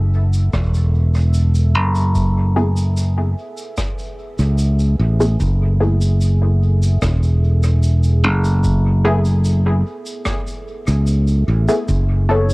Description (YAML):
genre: ambient dub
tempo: 74 BPM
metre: 4/4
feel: straight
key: F# minor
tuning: A4 = 440 Hz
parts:
  - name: deep dark ambient pad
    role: sustained chords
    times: 0.0-12.5 s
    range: B3 to E5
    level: -33 LUFS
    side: right 1 dB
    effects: chorus, built-in reverb, cassette tape
  - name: modern bright fingered electric bass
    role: bass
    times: 0.0-12.5 s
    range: E1 to C#2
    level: -14 LUFS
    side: equal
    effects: none
  - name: shaker and rim click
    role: drums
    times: 0.3-12.5 s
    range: none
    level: -30 LUFS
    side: equal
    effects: cassette tape, dub echo
  - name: electronic kick drum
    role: drums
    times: 0.5-12.1 s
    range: none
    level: -24 LUFS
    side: equal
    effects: cassette tape
  - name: filtered dub chord stab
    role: stabs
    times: 2.6-12.5 s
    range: A3 to A4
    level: -21 LUFS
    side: left 1 dB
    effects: chorus, cassette tape, dub echo
  - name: handpan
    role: arpeggios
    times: 12.3-12.5 s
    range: C#5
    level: -22 LUFS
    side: left 1 dB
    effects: cassette tape
room: small room ambience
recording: home recording on cassette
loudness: -14 LUFS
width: side -25 dB against mid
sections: 0.0-12.5 A section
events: fade-in on ambient pad 0.0-12.5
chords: 0.0 F#m11; 11.9 Asus2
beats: 0.53 1.34 | 2.16 2.97 3.78 4.59 | 5.40 6.21 7.02 7.83 | 8.64 9.45 10.26 11.07 | 11.89